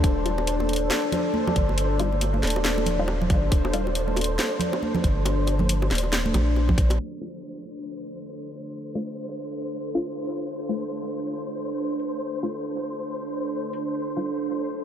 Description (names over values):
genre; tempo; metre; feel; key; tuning
deep dubstep; 138 BPM; 4/4; swing 59% on 16ths, half-time; D phrygian; A4 = 440 Hz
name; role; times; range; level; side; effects
deep dark ambient pad; sustained chords; 0.0-14.8 s; D4 to A4; -29 LUFS; equal; chorus, built-in reverb
soft dub sub bass; bass; 0.0-7.0 s; Eb1 to Bb1; -25 LUFS; equal; none
electronic kick drum; drums; 0.0-6.9 s; none; -22 LUFS; equal; none
garage drum kit; drums; 0.0-13.8 s; hi-hat, snare drum; -30 LUFS; equal; none
bongos and congas; percussion; 0.0-7.0 s; none; -30 LUFS; right 2 dB; dub echo
flickering grainy texture; texture; 0.0-14.8 s; C5; -34 LUFS; equal; built-in reverb
filtered dub chord stab; stabs; 0.3-3.9, 7.2-14.3 s; G3 to F4; -35 LUFS; left 2 dB; phaser, dub echo
room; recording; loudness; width
moderate huge ambient reverb, RT60 8.3 s; dreamy mix soaked in reverb, low-pass filter; -23 LUFS; side -10 dB against mid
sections
0.0-7.0 A section; 7.0-14.8 B section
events
filter sweep 7.0-14.8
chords
0.0 Eb; 7.0 D5; 14.0 Ebadd9